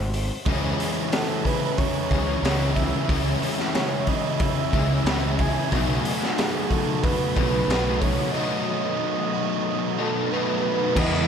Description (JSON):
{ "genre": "rock, shoegaze and dream pop", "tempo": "91 BPM", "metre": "4/4", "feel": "straight", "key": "unclear", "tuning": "A4 = 440 Hz", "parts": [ { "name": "breathy flute-like synth lead", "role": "melody", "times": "0.0-11.3 s", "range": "G#4 to G#5", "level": "-28 LUFS", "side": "right 3 dB", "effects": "chorus, analog delay" }, { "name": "fuzz picked electric bass", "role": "bass", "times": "0.0-11.3 s", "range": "G#1 to E2", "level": "-26 LUFS", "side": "equal", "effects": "overdrive" }, { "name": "raw garage drum kit", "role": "drums", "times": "0.1-11.1 s", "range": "crash cymbal, hi-hat, kick drum, snare drum", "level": "-26 LUFS", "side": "equal", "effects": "none" }, { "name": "biting overdriven guitar", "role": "riff", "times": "0.5-11.3 s", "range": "E2 to F#4", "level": "-28 LUFS", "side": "right 10 dB", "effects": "reverse reverb" }, { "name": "overdriven semi-hollow guitar", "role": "riff", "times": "0.5-11.3 s", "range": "B2 to E4", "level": "-27 LUFS", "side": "left 11 dB", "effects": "analog chorus" } ], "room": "moderate huge ambient reverb, RT60 8.9 s", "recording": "dreamy mix soaked in reverb", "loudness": "-21 LUFS", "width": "side -7 dB against mid", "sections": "0.0-11.0 A section", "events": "none", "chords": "0.5 C#m; 5.7 B7" }